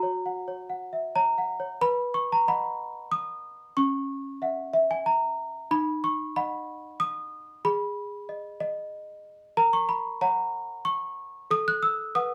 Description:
classical, lullaby for celesta; 93 BPM; 3/4; straight; B major; A4 = 435 Hz
small celesta; solo; 0.0-12.3 s; C#4 to F#6; -28 LUFS; equal
moderate studio ambience, RT60 0.5 s; band playing live in one room; -28 LUFS; mono
0.0-1.8 A section; 1.8-12.3 B section
0.0 F#; 1.8 B; 3.8 F#7/C#; 5.7 B/D#; 7.6 G#m; 9.6 F#/A#; 11.5 B5/A

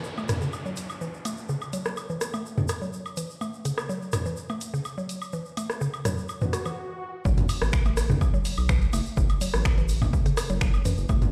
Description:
minimal techno; 125 BPM; 4/4; straight; F# minor; A4 = 440 Hz
egg shaker; percussion; 0.0-11.3 s; -45 LUFS; equal
downlifter and swell; sound effects; 0.0-7.3 s; -43 LUFS; equal
mallet-like synth pluck; riff; 0.2-11.1 s; C#3 to F#4; -34 LUFS; equal; chorus, sidechain pumping, tape echo
organic electronic drum kit; percussion; 0.2-11.3 s; rim click, toms, woodblock; -33 LUFS; equal
punchy analog drum machine; drums; 0.3-11.3 s; finger snaps, hi-hat; -37 LUFS; equal
round analog bass; bass; 7.3-11.2 s; F#1 to F#2; -29 LUFS; equal; tube saturation, sidechain pumping
electronic kick drum; drums; 7.3-11.2 s; -27 LUFS; equal
light reverb, digital ambience; played on a big sound system in a bare room, stone room reverb; -27 LUFS; mono
0.0-7.3 A section; 7.3-11.3 B section
filter sweep on synth arpeggio sound 0.0-7.3; swell 6.4-7.3; stop 6.8-7.3; drop 7.3-11.3
0.0 F#m7; 7.3 F#m

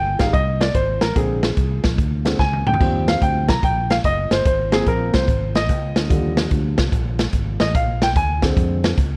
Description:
uptempo gospel; 146 BPM; 4/4; swing 66% on 8ths; Eb major; A4 = 440 Hz
warm upright piano; accompaniment; 0.0-9.0 s; D3 to Bb5; -24 LUFS; equal
fingered electric bass; bass; 0.0-9.2 s; Gb1 to F2; -25 LUFS; equal
swinging big-band drum kit; drums; 0.2-9.1 s; hi-hat, kick drum, snare drum, splash cymbal, toms; -22 LUFS; equal
light reverb; worn, warbling old tape, cassette tape, warbly pitch drift; -19 LUFS; mono
0.0-9.2 A section
upright piano solo 0.0-9.2; drum fill 2.4-2.8
0.0 Fm7; 1.2 Bb7; 2.8 Eb6; 4.5 Ab6; 6.1 Ebmaj7; 7.7 Bb7

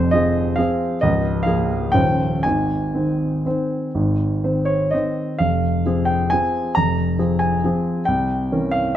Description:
classical, piano waltz; 117-143 BPM; 3/4; rubato; Ab major, F minor from 5.4 s; A4 = 436 Hz
warm grand piano; solo; 0.0-9.0 s; Db1 to Bb5; -17 LUFS; equal
moderate recital hall reverb, RT60 1.6 s; close, detailed microphones; -18 LUFS; side -11 dB against mid
0.0-5.4 A section; 5.4-9.0 B section
0.0 Fm; 1.0 Bbm7/Db; 1.9 Eb13; 2.4 Ab; 5.4 Fm; 8.1 C7b9

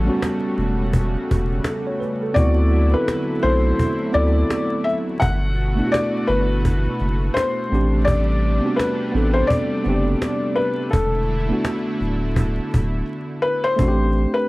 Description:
lo-fi hip hop; 84 BPM; 4/4; swing 60% on 16ths; A dorian; A4 = 438 Hz
felt-muted upright piano; melody; 0.0-14.5 s; A4 to F#5; -24 LUFS; left 2 dB; low-pass filter
mellow tine electric piano; accompaniment; 0.0-14.5 s; G3 to C#5; -23 LUFS; right 1 dB; medium stereo tremolo, cassette tape, low-pass filter
lush unison pad; sustained chords; 0.0-13.8 s; B2 to F#4; -28 LUFS; equal; chorus, low-pass filter
saturated sub bass; bass; 0.0-14.3 s; D1 to D2; -20 LUFS; equal
cajon; drums; 0.2-14.2 s; -23 LUFS; equal
light reverb; vinyl crackle; -18 LUFS; side -20 dB against mid
0.0-13.8 A section
drums muted 13.1-13.8
0.0 A13; 2.4 D13; 5.2 Gmaj9; 7.7 Am11; 10.9 E7sus4; 13.8 Am11

